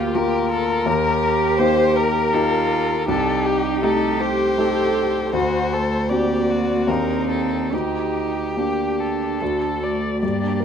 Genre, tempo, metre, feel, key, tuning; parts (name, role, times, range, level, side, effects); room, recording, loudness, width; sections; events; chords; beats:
classical, slow romantic movement for piano quartet; 69-84 BPM; 3/4; rubato; A4 = 440 Hz
muted violin; melody; 0.0-10.6 s; Eb4 to D5; -24 LUFS; left 4 dB
muted cello; second line; 0.0-10.6 s; A3 to A4; -24 LUFS; right 6 dB
muted violin; second line; 0.0-10.6 s; F4 to D5; -27 LUFS; equal
clear grand piano; accompaniment; 0.0-10.6 s; C2 to Bb4; -22 LUFS; left 2 dB
light reverb; -18 LUFS; side -7 dB against mid
0.0-10.2 A section
0.0 Bb/D; 0.9 Eb; 3.1 Am7b5/C; 5.3 D7; 6.9 Ebmaj7; 7.7 Gm/D; 9.4 D
0.15 | 0.87 1.59 2.34 | 3.09 3.84 4.59 | 5.34 6.10 6.88 | 7.72 8.57 9.41 | 10.22